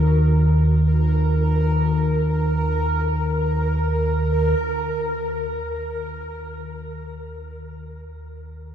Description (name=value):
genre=dark ambient drone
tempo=free time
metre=none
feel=none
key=Eb minor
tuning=A4 = 438 Hz
part: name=dark detuned synth bell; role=arpeggios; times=0.0-4.6 s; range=Gb4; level=-42 LUFS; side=right 2 dB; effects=none
part: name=deep rumbling drone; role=drone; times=0.0-8.7 s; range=Eb2 to Eb3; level=-20 LUFS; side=equal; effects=built-in reverb, phaser, wide subtle chorus
part: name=bubbling stepped-filter texture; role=texture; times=0.0-4.6 s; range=Bb4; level=-26 LUFS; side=right 2 dB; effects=chorus, built-in reverb, shimmer reverb
room=wet huge ambient reverb, RT60 8.3 s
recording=dreamy mix soaked in reverb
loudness=-18 LUFS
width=side -9 dB against mid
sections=0.0-4.6 A section; 4.6-8.7 B section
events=none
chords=0.0 Ebmadd9; 4.6 N.C.